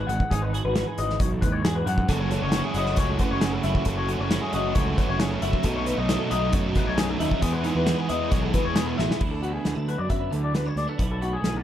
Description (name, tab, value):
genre	math rock and midwest emo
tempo	135 BPM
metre	4/4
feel	straight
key	E major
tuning	A4 = 441 Hz
part	twelve-string electric guitar	accompaniment	0.0-11.6 s	E2 to A4	-30 LUFS	right 6 dB	ensemble chorus
part	electric guitar through a small old amp	arpeggios	0.0-11.6 s	F#4 to F#5	-29 LUFS	left 5 dB	spring reverb
part	fuzz picked electric bass	bass	0.0-11.6 s	F#1 to F#2	-28 LUFS	equal	overdrive
part	loose indie drum kit	drums	0.1-11.5 s	crash cymbal, hi-hat, kick drum, snare drum	-26 LUFS	equal	none
part	biting overdriven guitar	riff	2.1-9.2 s	F#2 to F#4	-29 LUFS	right 1 dB	none
room	little or no reverb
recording	dark, warm production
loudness	-22 LUFS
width	side -11 dB against mid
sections	0.0-9.2 A section; 9.2-11.6 B section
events	drum fill 9.0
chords	0.0 Emaj9/G#; 2.1 F#m7; 5.7 B7; 7.4 Emaj7; 9.2 D69; 11.0 B7sus4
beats	| 0.31 0.76 1.20 1.65 | 2.09 2.54 2.98 3.43 | 3.87 4.32 4.76 5.21 | 5.65 6.09 6.54 6.98 | 7.43 7.87 8.31 8.76 | 9.21 9.65 10.10 10.54 | 10.99 11.44